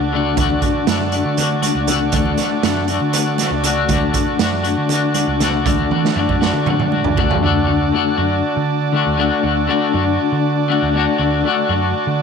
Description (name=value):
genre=psychedelic rock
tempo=238 BPM (eighths)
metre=7/8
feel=straight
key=D major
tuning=A4 = 439 Hz
part: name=combo organ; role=sustained chords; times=0.0-12.2 s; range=F#4 to A5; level=-24 LUFS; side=right 13 dB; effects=none
part: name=clean electric guitar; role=riff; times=0.0-12.2 s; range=D3 to F#4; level=-18 LUFS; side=left 8 dB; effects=harmonic tremolo
part: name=hollow-body short-scale picked electric bass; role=bass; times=0.0-12.2 s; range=C#2 to D3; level=-21 LUFS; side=right 2 dB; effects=none
part: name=raw garage drum kit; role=drums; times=0.4-7.4 s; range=hi-hat, kick drum, snare drum, toms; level=-20 LUFS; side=right 7 dB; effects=none
part: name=congas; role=percussion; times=0.4-7.3 s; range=none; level=-30 LUFS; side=right 14 dB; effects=none
room=light reverb, small room reverb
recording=1960s-style stereo with parts hard left and right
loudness=-15 LUFS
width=side -6 dB against mid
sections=0.0-7.4 A section; 7.4-12.2 B section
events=drum fill 5.9-7.4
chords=0.0 D